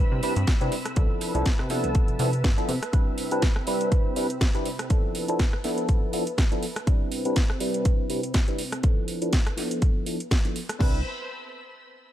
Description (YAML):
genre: filtered disco house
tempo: 122 BPM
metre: 4/4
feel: swing 56% on 16ths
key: C major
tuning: A4 = 436 Hz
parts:
  - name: tine electric piano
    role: accompaniment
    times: 0.0-11.0 s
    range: F3 to B4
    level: -29 LUFS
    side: equal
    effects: phaser, sidechain pumping, low-pass filter
  - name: string machine, full ensemble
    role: sustained chords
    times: 0.0-11.0 s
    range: C4 to E6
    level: -35 LUFS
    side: right 1 dB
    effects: ensemble chorus, vintage 12-bit sampler grit, sidechain pumping, low-pass filter
  - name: plucky analog bass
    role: bass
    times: 0.0-2.8, 10.8-11.0 s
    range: C2 to C3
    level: -27 LUFS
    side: equal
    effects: tube saturation, sidechain pumping, low-pass filter
  - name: maracas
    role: percussion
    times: 0.1-2.9 s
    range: none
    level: barely audible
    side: none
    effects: none
  - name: house drum kit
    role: drums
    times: 0.2-10.9 s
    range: crash cymbal, hi-hat, rim click, snare drum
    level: -32 LUFS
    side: right 1 dB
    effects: sidechain pumping on hats, sidechain pumping on cymbals
  - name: electronic kick drum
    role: drums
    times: 0.5-10.9 s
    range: none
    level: -23 LUFS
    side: equal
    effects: none
room: little or no reverb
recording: none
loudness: -22 LUFS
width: side -12 dB against mid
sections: 0.0-10.8 A section; 10.8-12.1 B section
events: filter sweep 0.0-10.8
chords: 0.0 Cmaj7; 1.0 G13/C (rootless); 2.9 Cmaj7; 4.9 Dm69/F; 6.9 Cmaj7; 8.8 Dm69/F; 10.8 Cmaj7